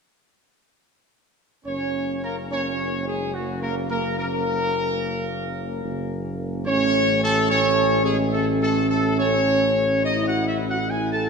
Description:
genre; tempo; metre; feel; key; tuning
classical; 72 BPM; 3/4; straight; F# mixolydian; A4 = 436 Hz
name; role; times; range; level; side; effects
bright trumpet section; melody; 1.7-11.3 s; F#4 to A5; -23 LUFS; left 1 dB; none
dark French horn section; sustained chords; 1.7-11.3 s; A3 to E4; -29 LUFS; left 1 dB; none
warm trombone section; sustained chords; 1.7-11.3 s; F#3 to A4; -27 LUFS; right 3 dB; none
mellow tuba; bass; 1.7-11.3 s; F#1 to A1; -26 LUFS; right 1 dB; none
room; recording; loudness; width
wet concert hall reverb, RT60 2.5 s; minimal, uncompressed stereo recording; -20 LUFS; side -5 dB against mid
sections
1.7-11.3 A section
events
none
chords
1.7 F#; 6.7 A

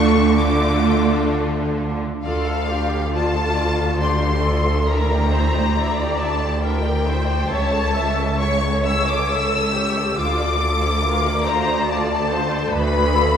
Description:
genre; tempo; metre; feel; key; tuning
classical, slow romantic movement for string orchestra; 69 BPM; 3/4; uneven beats, rubato; D minor; A4 = 442 Hz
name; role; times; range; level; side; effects
clear symphonic violin section; melody; 0.0-13.4 s; F5 to E6; -23 LUFS; left 4 dB; none
rich chamber violin section; second line; 0.0-13.4 s; E4 to F5; -27 LUFS; left 2 dB; none
clear symphonic viola section; accompaniment; 0.0-13.4 s; A3 to E5; -24 LUFS; right 2 dB; none
rich studio double bass section; bass; 0.0-13.4 s; C#2 to D2; -23 LUFS; right 1 dB; none
rich symphonic cello section; bass; 0.0-13.4 s; C#2 to D3; -24 LUFS; right 1 dB; none
room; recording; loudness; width
wet scoring stage reverb, RT60 1.5 s; heard from further back in the room; -17 LUFS; side -8 dB against mid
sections
0.0-2.3 A section; 2.3-13.4 A section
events
none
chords
0.0 Dm; 4.9 Em7b5/D; 7.5 A/C#; 10.2 Dm; 12.7 Bdim/D

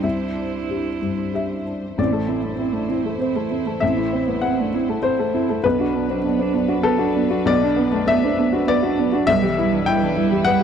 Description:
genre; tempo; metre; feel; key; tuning
neoclassical piano and strings; 91-102 BPM; 3/4; rubato; A dorian; A4 = 440 Hz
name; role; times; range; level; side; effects
muted cello; second line; 0.0-10.6 s; E3 to E4; -22 LUFS; right 10 dB; none
dark baby grand piano; accompaniment; 0.0-10.6 s; A1 to G5; -20 LUFS; left 6 dB; none
muted studio string section; sustained chords; 0.0-10.6 s; E3 to C5; -28 LUFS; right 3 dB; none
room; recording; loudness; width
little or no reverb; dry, close 1970s-style studio recording; -18 LUFS; side -8 dB against mid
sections
0.0-2.0 A section; 2.0-10.6 B section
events
none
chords
0.0 Cadd9; 2.0 Am; 5.6 Bm; 9.3 Em/B

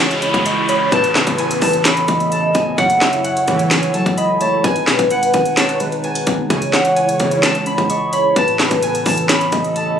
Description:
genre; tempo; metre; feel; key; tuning
hip hop, trap; 129 BPM; 4/4; half-time; C# minor; A4 = 439 Hz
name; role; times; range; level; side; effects
concert harp; melody; 0.0-10.0 s; F#4 to C#6; -19 LUFS; equal; tape echo
warm velvety synth lead; second line; 0.0-10.0 s; B4 to D#5; -20 LUFS; equal; chorus, tape echo
muted felt-like synth keys; accompaniment; 0.0-10.0 s; F#2 to C#5; -24 LUFS; right 1 dB; chorus
hollow soft pad; sustained chords; 0.0-10.0 s; C#3 to B4; -27 LUFS; left 1 dB; ensemble chorus
analog synth brass; stabs; 0.0-7.5 s; G#1 to E3; -24 LUFS; equal; chorus
long sustained 808-style bass; bass; 0.0-10.0 s; F#1 to F#2; -28 LUFS; equal; none
trap drum kit; drums; 0.0-9.9 s; handclaps, hi-hat, kick drum, snare drum; -17 LUFS; equal; none
downlifter; sound effects; 0.0-2.8 s; none; -24 LUFS; equal; none
room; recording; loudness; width
light reverb, digital ambience; recorded on a phone in the room, studio ambience, compression; -13 LUFS; side -8 dB against mid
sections
0.0-10.0 A section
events
none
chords
0.0 C#m; 0.9 Aadd9; 2.8 F#m7; 4.6 G#m; 6.5 C#m; 8.4 Aadd9

